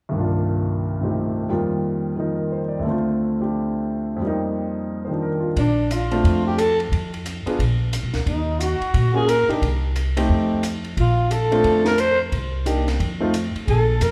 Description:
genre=jazz, small-group swing and bop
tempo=177 BPM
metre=4/4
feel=swing 62% on 8ths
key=Bb major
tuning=A4 = 442 Hz
part: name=warm concert grand piano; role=accompaniment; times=0.1-13.3 s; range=C2 to D5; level=-25 LUFS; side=equal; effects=none
part: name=growling alto saxophone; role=melody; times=5.6-14.1 s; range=D4 to C5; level=-25 LUFS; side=equal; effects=none
part: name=breathy trumpet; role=second line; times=5.6-14.1 s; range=D4 to C5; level=-28 LUFS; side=equal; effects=none
part: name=upright bass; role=bass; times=5.6-14.1 s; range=Bb1 to Bb2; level=-24 LUFS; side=equal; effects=none
part: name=compact cocktail drum kit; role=drums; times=5.6-14.1 s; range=hi-hat, kick drum, ride cymbal, snare drum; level=-31 LUFS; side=equal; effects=none
room=moderate recital hall reverb, RT60 1.6 s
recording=recorded in a church or concert hall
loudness=-21 LUFS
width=mono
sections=0.1-5.6 A section; 5.6-14.1 B section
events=none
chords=0.1 Cm11; 1.5 F7sus4; 2.8 Dm7; 4.2 F7sus4; 5.6 Bbmaj9; 6.9 Fm; 7.6 Bb; 8.3 Ebm; 9.6 Cm; 10.3 F7; 11.0 Bbmaj9; 12.3 Cm7; 13.0 F7

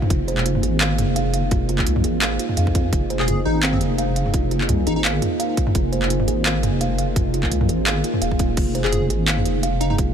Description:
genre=half-time drum and bass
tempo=170 BPM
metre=4/4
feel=swing 54% on 16ths, half-time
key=F minor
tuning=A4 = 440 Hz
part: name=deep dark ambient pad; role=sustained chords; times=0.0-10.1 s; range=Bb3 to C5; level=-25 LUFS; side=equal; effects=chorus, built-in reverb, sidechain pumping
part: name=kalimba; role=arpeggios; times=0.0-10.1 s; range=F4 to F5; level=-28 LUFS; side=right 4 dB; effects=ping-pong delay
part: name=organic electronic drum kit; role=drums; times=0.0-10.1 s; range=crash cymbal, handclaps, hi-hat, toms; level=-24 LUFS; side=equal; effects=overdrive
part: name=deep soft wobble bass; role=bass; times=0.1-10.1 s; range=Eb1 to F2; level=-22 LUFS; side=equal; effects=chorus
part: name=electronic kick drum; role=drums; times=0.1-10.1 s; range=none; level=-21 LUFS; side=equal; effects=none
part: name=plucky unison lead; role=melody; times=3.2-5.0, 8.8-10.0 s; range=C4 to Ab4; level=-28 LUFS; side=left 2 dB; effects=vintage 12-bit sampler grit, digital delay
room=light reverb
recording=none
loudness=-18 LUFS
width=side -8 dB against mid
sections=0.0-10.1 A section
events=none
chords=0.0 Fm

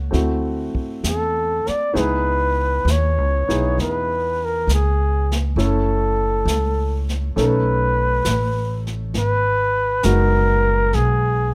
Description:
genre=jazz ballad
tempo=67 BPM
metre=4/4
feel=swing 68% on 8ths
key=unclear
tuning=A4 = 440 Hz
part: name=warm baby grand piano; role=accompaniment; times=0.0-11.5 s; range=G#3 to A4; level=-28 LUFS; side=equal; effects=none
part: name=upright bass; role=bass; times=0.0-11.5 s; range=F#1 to E2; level=-23 LUFS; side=equal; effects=none
part: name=jazz brush drum kit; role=drums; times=0.1-11.5 s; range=brushed snare drum, hi-hat, kick drum, snare drum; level=-32 LUFS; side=equal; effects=none
part: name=warm flugelhorn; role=melody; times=1.1-11.5 s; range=G#4 to D5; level=-23 LUFS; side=equal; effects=none
room=light reverb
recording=close, detailed microphones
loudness=-20 LUFS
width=mono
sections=0.0-11.5 A section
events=none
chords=0.1 D9; 1.9 C#m7; 5.6 F#m7; 7.4 B7; 9.1 Emaj9#11 (rootless)

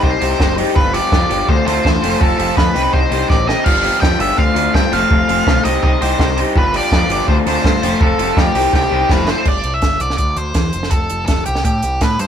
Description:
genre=indie rock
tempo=165 BPM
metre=4/4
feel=straight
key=unclear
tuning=A4 = 441 Hz
part: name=octave-fuzz lead guitar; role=melody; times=0.0-12.3 s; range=G4 to G5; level=-19 LUFS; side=right 1 dB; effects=distortion
part: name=tonewheel organ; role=sustained chords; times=0.0-9.5 s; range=C4 to C6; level=-31 LUFS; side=equal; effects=none
part: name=electric guitar through a small old amp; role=riff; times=0.0-9.5 s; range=G2 to G4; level=-19 LUFS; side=left 4 dB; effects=none
part: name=raw garage guitar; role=riff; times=0.0-9.5 s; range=D3 to G4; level=-22 LUFS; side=right 3 dB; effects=overdrive
part: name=growling picked electric bass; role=bass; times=0.0-12.3 s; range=F1 to A2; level=-21 LUFS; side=equal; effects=overdrive
part: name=compact cocktail drum kit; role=drums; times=0.0-12.3 s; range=crash cymbal, hi-hat, kick drum, snare drum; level=-17 LUFS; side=right 1 dB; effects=none
room=light reverb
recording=band playing live in one room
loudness=-12 LUFS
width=side -8 dB against mid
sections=0.0-9.5 A section; 9.5-12.3 B section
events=drum fill 3.3-3.7, 8.7-9.5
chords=0.0 Cm; 0.8 G7; 1.5 Dm7; 2.0 F; 2.8 Cm; 3.7 G7; 4.4 Dm7; 4.9 F; 5.7 Cm; 6.6 G7; 7.3 Dm7; 7.8 F; 8.5 Cm; 9.1 Fmaj7; 9.5 Cadd9/G; 10.2 Cadd9/D; 10.7 F; 11.5 C5

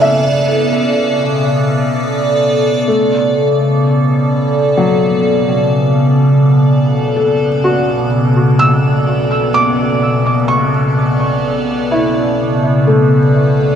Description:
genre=ambient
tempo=63 BPM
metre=4/4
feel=straight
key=B minor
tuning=A4 = 435 Hz
part: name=evolving wavetable pad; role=sustained chords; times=0.0-13.8 s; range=B2 to D5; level=-12 LUFS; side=equal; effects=phaser, built-in reverb
part: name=felt-muted upright piano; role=arpeggios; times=0.0-13.8 s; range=F#3 to E6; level=-17 LUFS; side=left 1 dB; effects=tape echo
part: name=dark studio double bass section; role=bass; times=2.9-13.8 s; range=B1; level=-34 LUFS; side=equal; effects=none
room=wet cathedral reverb, RT60 6.2 s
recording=none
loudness=-11 LUFS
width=side -8 dB against mid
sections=0.0-2.9 A section; 2.9-13.8 B section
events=none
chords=0.0 Bm7

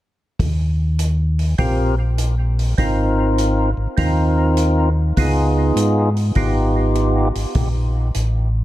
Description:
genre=soul jazz organ trio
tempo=100 BPM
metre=4/4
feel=swing 67% on 8ths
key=Eb mixolydian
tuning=A4 = 441 Hz
part: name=mellow tonewheel organ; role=bass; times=0.4-8.6 s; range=Ab1 to Ab2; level=-18 LUFS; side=equal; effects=slow rotary speaker
part: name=swinging big-band drum kit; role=drums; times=0.4-8.3 s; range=hi-hat, kick drum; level=-24 LUFS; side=equal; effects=none
part: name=percussive tonewheel organ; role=melody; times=1.6-7.3 s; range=Cb4 to Bb4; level=-20 LUFS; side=equal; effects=slow rotary speaker, overdrive, plate reverb, tape echo
room=light reverb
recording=dark, warm production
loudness=-16 LUFS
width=side -15 dB against mid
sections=0.4-8.6 A section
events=none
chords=0.4 Eb69; 2.8 Ab6; 5.2 Db9; 7.6 N.C.

